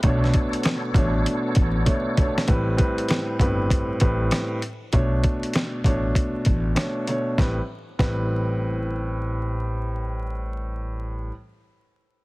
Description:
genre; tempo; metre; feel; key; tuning
hip hop, boom-bap hip-hop; 98 BPM; 4/4; swing 62% on 16ths; unclear; A4 = 440 Hz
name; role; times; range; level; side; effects
warm upright piano; accompaniment; 0.0-11.3 s; A2 to C#5; -26 LUFS; equal; high-pass filter, low-pass filter
tonewheel organ; sustained chords; 0.0-2.5 s; B3 to C#5; -31 LUFS; equal; chorus vibrato, fast rotary speaker, high-pass filter, low-pass filter
upright bass; bass; 0.0-11.3 s; G1 to B1; -25 LUFS; equal; none
dusty soul sampler-style drum kit; drums; 0.0-8.2 s; hi-hat, kick drum, rim click, snare drum; -22 LUFS; equal; none
room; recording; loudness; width
small room ambience; heavily compressed radio sound, multiband compression, vinyl crackle; -21 LUFS; side -22 dB against mid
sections
0.0-2.5 A section; 2.5-7.4 B section; 7.4-9.8 C section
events
drum fill 1.9-2.5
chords
0.0 Bm9; 2.5 Am9; 4.9 Bm9; 7.4 Am9

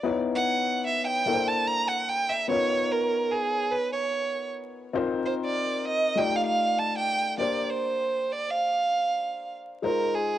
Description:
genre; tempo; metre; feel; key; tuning
hip hop; 98 BPM; 4/4; swing 64% on 16ths; Bb major; A4 = 442 Hz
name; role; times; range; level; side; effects
clear violin; melody; 0.0-10.4 s; Ab4 to Bb5; -25 LUFS; right 3 dB; cassette tape
dark upright piano; accompaniment; 0.0-10.4 s; Ab3 to D5; -30 LUFS; left 6 dB; cassette tape
room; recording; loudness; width
light reverb, small room ambience; home recording on cassette, vinyl crackle; -24 LUFS; side -12 dB against mid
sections
0.0-7.4 A section; 7.4-10.4 B section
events
violin solo 0.0-7.4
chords
0.0 Dbm9; 1.3 C13; 2.5 Bmaj9#11; 4.9 Cm7; 6.2 F13; 7.4 Bb69; 9.8 Fm7

